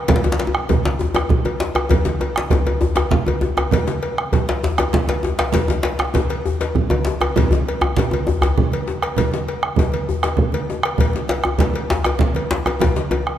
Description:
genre	west african traditional, West African drum ensemble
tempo	132 BPM (dotted quarters)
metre	12/8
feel	straight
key	none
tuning	none
part	bombo	percussion	0.1-13.4 s	none	-21 LUFS	right 1 dB	none
part	congas	percussion	0.1-13.2 s	none	-25 LUFS	right 6 dB	none
part	cowbell	percussion	0.1-13.3 s	none	-26 LUFS	left 2 dB	none
part	djembe	percussion	0.1-13.1 s	none	-26 LUFS	left 4 dB	none
part	djembe	percussion	0.1-8.6, 11.3-13.3 s	none	-21 LUFS	left 2 dB	none
room	moderate concert hall reverb, RT60 2.3 s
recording	close, detailed microphones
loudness	-17 LUFS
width	side -11 dB against mid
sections	0.1-13.4 A section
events	drum fill 12.8-13.4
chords	none

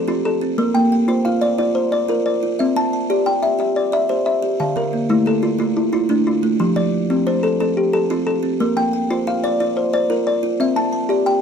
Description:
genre	southern african traditional, mbira-style interlocking cycle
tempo	120 BPM (dotted quarters)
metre	12/8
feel	straight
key	F major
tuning	A4 = 439 Hz
part	buzzing kalimba	arpeggios	0.0-11.4 s	D3 to A5	-20 LUFS	right 5 dB	none
part	kalimba	arpeggios	0.0-11.4 s	D3 to A5	-18 LUFS	left 4 dB	none
room	light reverb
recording	dark, warm production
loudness	-16 LUFS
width	side -7 dB against mid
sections	0.0-11.4 A section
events	none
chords	0.0 F; 0.6 Bb; 2.6 C; 4.6 Dm; 6.6 F; 8.6 Bb; 10.6 C

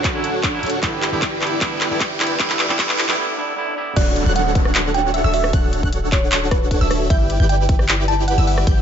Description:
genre	future bass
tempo	153 BPM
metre	4/4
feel	half-time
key	D major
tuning	A4 = 440 Hz
part	dense compressed supersaw	riff	0.0-8.8 s	D4 to G5	-23 LUFS	equal	sidechain pumping, low-pass filter
part	warm 808-style bass	bass	0.0-8.8 s	D1 to G1	-21 LUFS	equal	sidechain pumping
part	big-room dance drum kit	drums	0.0-8.8 s	crash cymbal, handclaps, hi-hat, rim click	-22 LUFS	equal	small room reverb
part	electronic kick drum	drums	0.0-8.8 s	none	-19 LUFS	equal	small room reverb
part	riser, swell and downlifter	sound effects	0.1-7.1 s	none	-29 LUFS	right 1 dB	none
part	twangy electric guitar	accompaniment	0.1-4.0 s	D3 to E4	-26 LUFS	right 3 dB	sidechain pumping, ping-pong delay
part	thumb-piano-like synth pluck	melody	4.0-8.7 s	B4 to A5	-24 LUFS	right 3 dB	chorus, phaser, sidechain pumping, digital delay
part	wide unison pluck	arpeggios	4.0-8.8 s	E6 to G6	-31 LUFS	equal	sidechain pumping, ping-pong delay
room	light reverb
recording	high-pass filter, nothing above 7.7 kHz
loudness	-16 LUFS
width	side -8 dB against mid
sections	0.0-4.0 A section; 4.0-8.8 B section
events	build-up 0.0-4.0; drum fill 0.0-3.2; riser 0.1-3.2; break 3.2-4.0; swell 3.2-4.0; drop 4.0-8.8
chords	0.0 Dmaj7; 0.8 G6; 4.0 Dmaj7; 7.1 G6

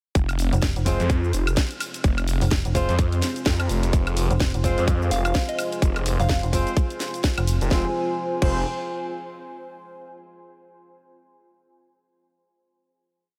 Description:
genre	bass house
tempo	127 BPM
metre	4/4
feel	swing 58% on 16ths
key	F minor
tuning	A4 = 440 Hz
part	dark analog pad	sustained chords	0.2-7.9 s	C4 to Ab5	-35 LUFS	equal	chorus, sidechain pumping
part	phased detuned saw bass	bass	0.2-8.6 s	F1 to F2	-26 LUFS	equal	phaser, overdrive, sidechain pumping
part	electronic kick drum	drums	0.2-8.5 s	none	-24 LUFS	equal	none
part	garage drum kit	drums	0.2-8.5 s	crash cymbal, hi-hat, shaker, snare drum, woodblock	-32 LUFS	equal	none
part	deep dark ambient pad	texture	3.1-9.6 s	F4 to C6	-38 LUFS	equal	chorus, built-in reverb, sidechain pumping
part	metallic FM bass	bass	0.5-7.6 s	F1	-25 LUFS	equal	overdrive, sidechain pumping
part	mellow horn section	stabs	0.9-8.6 s	Ab3 to C5	-34 LUFS	equal	sidechain pumping, delay
part	soft synth bell	melody	5.1-6.4 s	Eb5 to F5	-33 LUFS	equal	chorus, delay
room	light reverb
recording	none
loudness	-23 LUFS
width	mono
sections	0.2-7.7 drop; 7.7-9.6 final chord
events	drop 0.2-7.7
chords	0.2 Fm

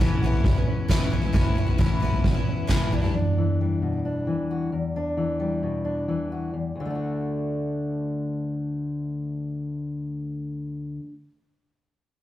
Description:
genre	indie folk with a building arrangement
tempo	133 BPM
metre	4/4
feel	straight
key	D major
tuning	A4 = 440 Hz
part	fingerpicked steel-string acoustic guitar	accompaniment	0.0-11.2 s	D2 to F#4	-27 LUFS	left 2 dB	none
part	picked twelve-string acoustic guitar	accompaniment	0.0-3.2 s	A2 to E4	-31 LUFS	left 1 dB	none
part	upright bass	bass	0.0-2.9 s	none	barely audible	none	none
part	soft-mallet drum kit	drums	0.2-3.1 s	kick drum, snare drum, toms	-22 LUFS	equal	none
room	moderate stone room reverb, RT60 1.2 s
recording	rough rehearsal-room recording, tube saturation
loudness	-23 LUFS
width	side -13 dB against mid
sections	0.0-6.8 A section; 6.8-10.4 B section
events	none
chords	0.0 Aadd9; 2.9 Em7; 6.8 D

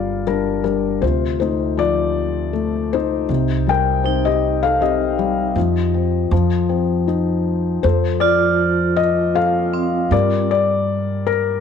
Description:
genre	acoustic folk-pop ballad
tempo	79 BPM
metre	3/4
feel	straight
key	unclear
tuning	A4 = 440 Hz
part	felt-muted upright piano	melody	0.0-11.6 s	C3 to G5	-18 LUFS	left 8 dB	none
part	upright bass	bass	0.0-11.6 s	G1 to G2	-22 LUFS	right 3 dB	none
part	vibraphone with hard mallets	arpeggios	4.1-10.5 s	C4 to F4	-22 LUFS	right 9 dB	slapback echo
room	light reverb, studio ambience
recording	1960s-style stereo with parts hard left and right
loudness	-16 LUFS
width	side -7 dB against mid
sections	0.0-7.8 A section; 7.8-11.6 B section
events	none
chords	0.0 G5; 1.0 Dm7; 3.3 Cm; 5.6 F5; 7.8 F; 10.1 Gm

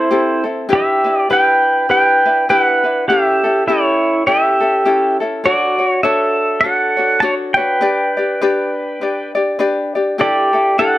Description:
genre	Hawaiian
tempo	101 BPM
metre	4/4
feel	swing 58% on 8ths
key	D major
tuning	A4 = 440 Hz
part	pedal steel guitar	melody	0.0-11.0 s	E4 to A5	-13 LUFS	right 1 dB	plate reverb
part	ukulele	accompaniment	0.0-11.0 s	C4 to D5	-18 LUFS	left 2 dB	plate reverb
room	wet studio ambience, RT60 0.5 s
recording	none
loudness	-12 LUFS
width	side -15 dB against mid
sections	0.0-11.0 A section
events	none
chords	0.0 Am7; 0.7 Em7; 3.1 A7; 5.4 Dmaj7; 7.8 G; 10.2 A7sus4

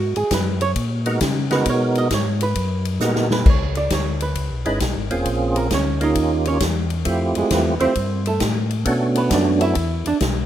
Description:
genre	soul jazz organ trio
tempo	133 BPM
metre	4/4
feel	swing 67% on 8ths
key	unclear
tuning	A4 = 440 Hz
part	archtop guitar, miked and amplified	accompaniment	0.0-10.2 s	G#3 to E5	-24 LUFS	right 4 dB	none
part	mellow tonewheel organ	bass	0.0-10.5 s	E1 to C#3	-22 LUFS	left 1 dB	chorus vibrato, slow rotary speaker
part	swinging big-band drum kit	drums	0.2-10.3 s	crash cymbal, hi-hat, kick drum, ride cymbal, snare drum	-23 LUFS	left 1 dB	none
part	percussive tonewheel organ	melody	1.1-9.8 s	G#3 to B4	-22 LUFS	right 2 dB	slow rotary speaker, chorus vibrato
room	light reverb, small room ambience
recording	rough home demo mix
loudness	-17 LUFS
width	side -11 dB against mid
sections	0.0-3.5 A section; 3.5-10.5 A section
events	hollow-body jazz guitar solo 0.0-10.5; drum fill 3.0-3.5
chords	0.0 G#m9; 3.5 C#m7; 5.3 A#m7; 6.2 D#9; 7.1 Fmaj7; 8.9 Bm7; 9.8 E5

